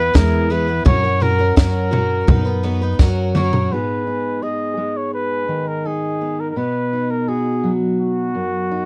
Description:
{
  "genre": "indie folk with a building arrangement",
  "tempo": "84 BPM",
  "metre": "4/4",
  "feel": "straight",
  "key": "unclear",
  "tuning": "A4 = 439 Hz",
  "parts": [
    { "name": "mellow trumpet", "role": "melody", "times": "0.0-8.9 s", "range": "F#4 to D#5", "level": "-24 LUFS", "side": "equal", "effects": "none" },
    { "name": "picked twelve-string acoustic guitar", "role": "accompaniment", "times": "0.0-3.7 s", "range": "E3 to B4", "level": "-25 LUFS", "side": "equal", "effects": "none" },
    { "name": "upright bass", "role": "bass", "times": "0.0-3.7 s", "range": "E2 to F#2", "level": "-22 LUFS", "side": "equal", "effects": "none" },
    { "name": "compact cocktail drum kit", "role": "drums", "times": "0.1-3.7 s", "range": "kick drum, snare drum, toms", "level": "-18 LUFS", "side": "equal", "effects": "none" },
    { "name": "fingerpicked steel-string acoustic guitar", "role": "accompaniment", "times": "3.7-8.9 s", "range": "F#2 to G#4", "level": "-24 LUFS", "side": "equal", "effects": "none" }
  ],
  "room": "little or no reverb",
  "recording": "dry, close 1970s-style studio recording",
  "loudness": "-19 LUFS",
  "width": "mono",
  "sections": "0.0-3.7 A section; 3.7-8.9 B section",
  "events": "drum fill 3.0-3.7",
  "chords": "0.0 E; 0.9 F#; 2.3 B/F#; 3.0 F#; 3.7 G#m; 6.6 B"
}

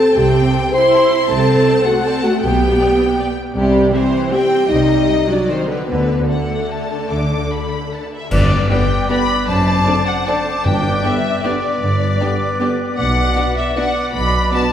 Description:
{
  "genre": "classical, orchestral ballroom waltz",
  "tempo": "140-172 BPM",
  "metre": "3/4",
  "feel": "rubato",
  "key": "G major",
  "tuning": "A4 = 440 Hz",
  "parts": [
    { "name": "warm symphonic violin section", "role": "second line", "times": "0.0-14.6 s", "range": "F#4 to C6", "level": "-24 LUFS", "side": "left 2 dB", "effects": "none" },
    { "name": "warm symphonic viola section", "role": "accompaniment", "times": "0.0-14.6 s", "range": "C3 to E4", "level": "-22 LUFS", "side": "right 1 dB", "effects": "none" },
    { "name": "mellow French horn section", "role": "sustained chords", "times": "0.0-14.7 s", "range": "G3 to C5", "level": "-17 LUFS", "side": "left 1 dB", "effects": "none" },
    { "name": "dark symphonic cello section", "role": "bass", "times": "0.2-14.5 s", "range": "F#2 to D3", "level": "-23 LUFS", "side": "right 1 dB", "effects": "none" },
    { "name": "rich studio double bass section", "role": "bass", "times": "0.2-14.5 s", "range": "F#1 to D2", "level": "-22 LUFS", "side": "right 1 dB", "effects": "none" },
    { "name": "warm symphonic violin section", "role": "melody", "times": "0.5-14.7 s", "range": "A4 to D6", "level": "-23 LUFS", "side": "left 4 dB", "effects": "none" },
    { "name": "cymbal swell, clash cymbals and concert bass drum", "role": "percussion", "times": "5.9-9.1 s", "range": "none", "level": "-23 LUFS", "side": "equal", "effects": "none" },
    { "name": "clear clarinet", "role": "second line", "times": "8.3-14.6 s", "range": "B4 to C5", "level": "-26 LUFS", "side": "equal", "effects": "none" },
    { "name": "mellow cor anglais", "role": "second line", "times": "8.3-14.6 s", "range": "D5", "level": "-25 LUFS", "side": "right 2 dB", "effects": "none" },
    { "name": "silver concert flute", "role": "second line", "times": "8.3-14.6 s", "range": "D6", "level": "-25 LUFS", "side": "equal", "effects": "none" },
    { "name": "timpani", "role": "percussion", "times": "8.3-11.2 s", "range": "G2", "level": "-23 LUFS", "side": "left 1 dB", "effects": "none" },
    { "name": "mellow trombone section", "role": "sustained chords", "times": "8.7-14.7 s", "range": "B2 to C4", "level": "-25 LUFS", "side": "right 1 dB", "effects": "none" }
  ],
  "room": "wet scoring stage reverb, RT60 2.1 s",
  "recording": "heard from further back in the room",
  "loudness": "-14 LUFS",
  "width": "side -9 dB against mid",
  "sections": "0.0-8.3 A section; 8.3-14.7 B section",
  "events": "band accent 8.3-8.7",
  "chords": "0.0 Am7/C; 1.3 N.C.; 2.4 G/B; 3.6 C; 4.7 Cm; 5.9 D5; 8.3 G; 9.5 D7/F#; 10.7 G; 13.0 Bm"
}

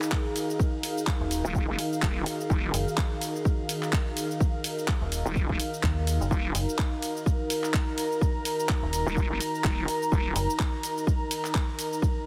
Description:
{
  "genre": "bass house",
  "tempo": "126 BPM",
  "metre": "4/4",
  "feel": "swing 57% on 16ths",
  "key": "Eb minor",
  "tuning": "A4 = 441 Hz",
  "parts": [
    { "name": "sweeping resonant pad", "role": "sustained chords", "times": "0.0-12.3 s", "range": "Eb3 to Bb4", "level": "-38 LUFS", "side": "equal", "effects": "chorus, sidechain pumping" },
    { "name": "house drum kit", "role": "drums", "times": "0.0-12.1 s", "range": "handclaps, hi-hat, ride cymbal, shaker", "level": "-36 LUFS", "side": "equal", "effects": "none" },
    { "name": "warbly tape-like pad", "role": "texture", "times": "0.0-12.3 s", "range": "Eb4 to Bb5", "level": "-35 LUFS", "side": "equal", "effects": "chorus, built-in reverb, sidechain pumping" },
    { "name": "electronic kick drum", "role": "drums", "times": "0.1-12.1 s", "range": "none", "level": "-29 LUFS", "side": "equal", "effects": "none" },
    { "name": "metallic FM bass", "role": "bass", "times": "1.2-10.5 s", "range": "Eb1 to Eb2", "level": "-31 LUFS", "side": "equal", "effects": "tube saturation, sidechain pumping" },
    { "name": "vowel-sweep wobble bass", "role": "bass", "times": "1.4-10.3 s", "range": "Eb1 to Gb1", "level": "-32 LUFS", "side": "equal", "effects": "chorus, tube saturation, sidechain pumping" }
  ],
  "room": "light reverb",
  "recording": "heavily compressed radio sound",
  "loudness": "-28 LUFS",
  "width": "mono",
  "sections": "0.0-12.3 A section",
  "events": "none",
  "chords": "0.0 Ebm"
}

